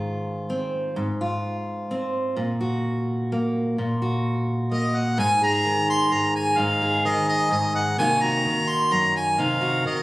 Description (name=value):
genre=acoustic folk duo or small band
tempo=128 BPM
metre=3/4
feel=straight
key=Ab mixolydian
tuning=A4 = 440 Hz
part: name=fingerpicked steel-string acoustic guitar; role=accompaniment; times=0.0-10.0 s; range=Gb2 to Ab4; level=-23 LUFS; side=equal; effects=none
part: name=clear harmonica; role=melody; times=4.7-10.0 s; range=Eb5 to C6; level=-22 LUFS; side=equal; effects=none
room=moderate large studio reverb, RT60 1.2 s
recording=recorded on a phone in the room, studio reverb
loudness=-21 LUFS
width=side -19 dB against mid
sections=0.0-5.2 A section; 5.2-10.0 B section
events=none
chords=0.0 Ab; 2.4 Gb/Bb; 5.2 Ab5; 8.0 Cm7b5